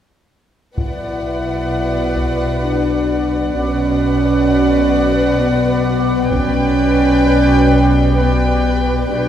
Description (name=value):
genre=cinematic, suspense film score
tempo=65 BPM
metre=3/4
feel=straight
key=B minor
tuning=A4 = 445 Hz
part: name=warm symphonic violin section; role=melody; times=0.8-9.3 s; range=F#5 to G5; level=-25 LUFS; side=left 2 dB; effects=none
part: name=warm symphonic violin section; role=second line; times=0.8-9.3 s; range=D5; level=-24 LUFS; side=left 2 dB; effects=none
part: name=dark chamber viola section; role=accompaniment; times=0.8-9.3 s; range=B4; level=-24 LUFS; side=right 2 dB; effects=none
part: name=mellow French horn section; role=sustained chords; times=0.8-9.3 s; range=B3 to E4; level=-17 LUFS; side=equal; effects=none
part: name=shimmering ambient pad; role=sustained chords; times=1.9-9.3 s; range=F#4 to D5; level=-26 LUFS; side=left 1 dB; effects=chorus, built-in reverb, phaser
part: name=dark studio double bass section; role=bass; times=0.8-9.3 s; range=B1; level=-24 LUFS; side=equal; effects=none
part: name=warm symphonic cello section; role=bass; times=0.8-9.3 s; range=B2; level=-22 LUFS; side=right 2 dB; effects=none
part: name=saturated sub bass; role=drone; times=0.8-9.3 s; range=B1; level=-23 LUFS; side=equal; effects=none
part: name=taiko ensemble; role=drums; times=0.8-8.1 s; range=none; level=-25 LUFS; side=equal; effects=none
room=wet scoring stage reverb, RT60 1.8 s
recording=heard from further back in the room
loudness=-13 LUFS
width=side -10 dB against mid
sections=0.8-9.3 A section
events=none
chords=0.8 Bm; 6.3 G/B